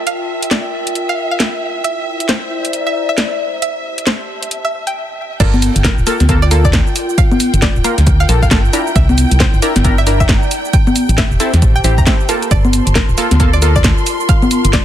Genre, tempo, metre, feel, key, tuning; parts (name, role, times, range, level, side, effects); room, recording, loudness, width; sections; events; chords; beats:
UK garage, two-step garage; 135 BPM; 4/4; swing 61% on 16ths; G dorian; A4 = 440 Hz
dark symphonic violin section; sustained chords; 0.0-14.8 s; E5 to C6; -25 LUFS; right 1 dB; sidechain pumping
warbly tape-like pad; texture; 0.0-14.8 s; E4 to Bb5; -23 LUFS; left 2 dB; chorus, built-in reverb, sidechain pumping
string-like resonator pluck; melody; 0.1-14.8 s; Bb4 to Bb5; -23 LUFS; right 1 dB; chorus, ping-pong delay
garage drum kit; drums; 0.1-14.8 s; congas, crash cymbal, hi-hat, shaker, snare drum; -16 LUFS; equal
punchy chord stab; stabs; 5.4-13.8 s; Bb3 to Bb4; -19 LUFS; equal; chorus, tape echo
organ-like FM bass; bass; 5.4-14.8 s; D1 to E2; -13 LUFS; equal; sidechain pumping
electronic kick drum; drums; 5.4-14.8 s; -14 LUFS; equal
little or no reverb; dense, heavily limited modern master, vinyl crackle; -11 LUFS; side -11 dB against mid
0.0-5.4 A section; 5.4-14.8 B section
break 5.0-5.4; drop 5.4-14.8
0.0 Gm9; 8.7 C9; 10.7 Am7; 12.5 Gm9
| 0.07 0.51 0.96 1.40 | 1.84 2.29 2.73 3.18 | 3.62 4.07 4.51 4.96 | 5.40 5.84 6.29 6.73 | 7.18 7.62 8.07 8.51 | 8.96 9.40 9.85 10.29 | 10.73 11.18 11.62 12.07 | 12.51 12.96 13.40 13.85 | 14.29 14.73